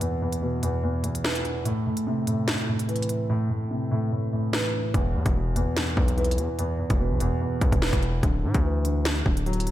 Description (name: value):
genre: hip hop, drill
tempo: 146 BPM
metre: 4/4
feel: half-time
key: unclear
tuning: A4 = 440 Hz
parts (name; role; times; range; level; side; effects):
- dark concert grand piano; accompaniment; 0.0-9.7 s; E2 to F#3; -26 LUFS; equal; wide subtle chorus, low-pass filter
- drill drum kit; drums; 0.0-9.7 s; hi-hat, kick drum, snare drum; -26 LUFS; equal; none
- distorted 808-style bass; bass; 4.9-9.7 s; D1 to A2; -26 LUFS; equal; distortion
room: light reverb, digital ambience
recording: none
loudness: -23 LUFS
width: side -13 dB against mid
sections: 0.0-9.7 A section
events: break 0.0-4.9; hi-hats muted 3.3-4.9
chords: 0.0 E5; 1.7 Am; 4.9 E5; 8.2 Dadd9